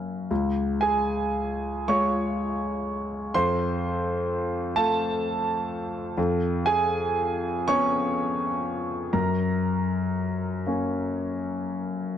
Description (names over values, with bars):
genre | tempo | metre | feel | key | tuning
neoclassical minimalist piano | 37-43 BPM (dotted quarters) | 6/8 | rubato | Db major | A4 = 441 Hz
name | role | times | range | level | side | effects
warm grand piano | solo | 0.0-12.2 s | Db2 to Db6 | -24 LUFS | equal | none
room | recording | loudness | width
moderate spring reverb, RT60 1.7 s, small room ambience | dark, warm production | -24 LUFS | side -9 dB against mid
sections
0.3-12.2 A section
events
none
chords
0.3 Db; 3.3 F; 6.2 Db7/F; 9.1 Gb